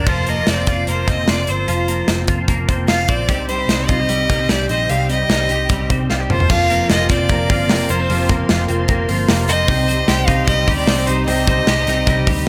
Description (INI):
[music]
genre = jangly indie pop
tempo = 150 BPM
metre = 4/4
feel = straight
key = unclear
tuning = A4 = 437 Hz
[part]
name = bright violin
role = melody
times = 0.0-12.4 s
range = C5 to G5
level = -22 LUFS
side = equal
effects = none
[part]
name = twelve-string electric guitar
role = arpeggios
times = 0.0-12.5 s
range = C3 to A4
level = -24 LUFS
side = equal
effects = ensemble chorus
[part]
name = vintage muted picked electric bass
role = bass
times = 0.0-12.4 s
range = F1 to D2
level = -24 LUFS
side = equal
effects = none
[part]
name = modern studio drum kit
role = drums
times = 0.1-12.4 s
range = crash cymbal, hi-hat, kick drum, snare drum, toms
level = -21 LUFS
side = equal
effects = none
[part]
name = picked steel-string acoustic guitar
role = accompaniment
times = 3.3-12.5 s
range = F2 to Eb4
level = -27 LUFS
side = equal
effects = none
[part]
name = rich chamber string section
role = sustained chords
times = 6.5-12.5 s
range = Eb4 to C6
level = -31 LUFS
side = equal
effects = none
[sound]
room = studio reverb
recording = none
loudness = -17 LUFS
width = mono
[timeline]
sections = 0.1-6.5 A section; 6.5-12.5 B section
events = drum fill 6.1-6.5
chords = 0.1 Fsus4; 3.3 Cm; 6.3 Fsus4; 9.7 Cm